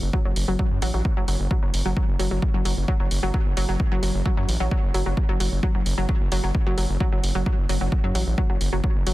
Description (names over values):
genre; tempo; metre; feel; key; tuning
driving peak-time techno; 131 BPM; 4/4; straight; F# minor; A4 = 444 Hz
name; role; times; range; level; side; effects
gritty driven synth bass; bass; 0.0-9.1 s; F#1 to F#2; -24 LUFS; equal; sidechain pumping
wide unison pluck; riff; 0.1-9.1 s; F#3; -28 LUFS; equal; tube saturation, vintage 12-bit sampler grit, sidechain pumping, digital delay
electronic kick drum; drums; 0.1-8.9 s; none; -23 LUFS; equal; none
electronic hi-hat; drums; 0.4-9.1 s; none; -32 LUFS; right 1 dB; sidechain pumping on hats
room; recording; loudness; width
digital ambience; dense, heavily limited modern master; -20 LUFS; side -17 dB against mid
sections
0.0-9.1 A section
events
none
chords
none